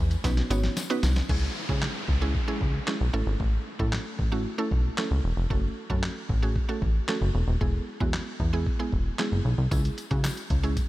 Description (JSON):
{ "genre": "dance-pop", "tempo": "114 BPM", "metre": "4/4", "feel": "straight", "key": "unclear", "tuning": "A4 = 440 Hz", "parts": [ { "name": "mallet-like synth pluck", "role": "accompaniment", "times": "0.0-10.8 s", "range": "G#3 to C#5", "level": "-32 LUFS", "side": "right 2 dB", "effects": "chorus, sidechain pumping" }, { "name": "plucky analog bass", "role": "bass", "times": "0.0-10.8 s", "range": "D#1 to C#3", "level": "-26 LUFS", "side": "equal", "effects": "sidechain pumping" }, { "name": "dusty soul sampler-style drum kit", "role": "drums", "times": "0.1-10.9 s", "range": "crash cymbal, handclaps, hi-hat, kick drum, snare drum", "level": "-29 LUFS", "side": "equal", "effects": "none" }, { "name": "tambourine", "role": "percussion", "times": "0.1-1.3, 9.7-10.9 s", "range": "none", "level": "-44 LUFS", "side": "left 8 dB", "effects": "none" }, { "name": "downlifter", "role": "sound effects", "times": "1.3-5.5 s", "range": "none", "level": "-38 LUFS", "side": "equal", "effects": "none" } ], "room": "light reverb", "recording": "none", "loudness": "-24 LUFS", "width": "side -17 dB against mid", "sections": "0.0-1.3 A section; 1.3-10.9 B section", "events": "drum fill 0.2-1.3", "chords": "0.2 Badd9; 1.3 C#m; 3.1 A; 5.5 F#m; 7.6 E; 9.7 C#m" }